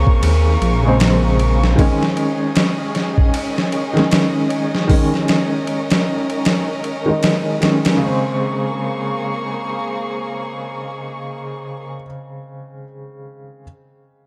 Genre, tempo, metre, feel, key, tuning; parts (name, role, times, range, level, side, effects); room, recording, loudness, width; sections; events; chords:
trip hop; 77 BPM; 4/4; swing 60% on 16ths; Bb minor; A4 = 440 Hz
clear upright piano; accompaniment; 0.0-13.6 s; Db3 to Eb4; -23 LUFS; equal; tremolo, low-pass filter, tape echo
rich chamber violin section; sustained chords; 0.0-11.9 s; Bb3 to Db6; -28 LUFS; equal
dark detuned saw bass; bass; 0.0-1.8 s; Bb1 to Eb2; -17 LUFS; equal
boom bap sampler-style drum kit; drums; 0.1-8.0 s; hi-hat, kick drum, ride cymbal, snare drum; -21 LUFS; equal
light reverb, digital ambience; dark, warm production; -18 LUFS; mono
0.0-8.0 A section; 8.0-11.1 B section
filter sweep on upright piano 0.0-8.0
0.0 Bbm7; 1.8 Dbsus2; 8.0 Bbm7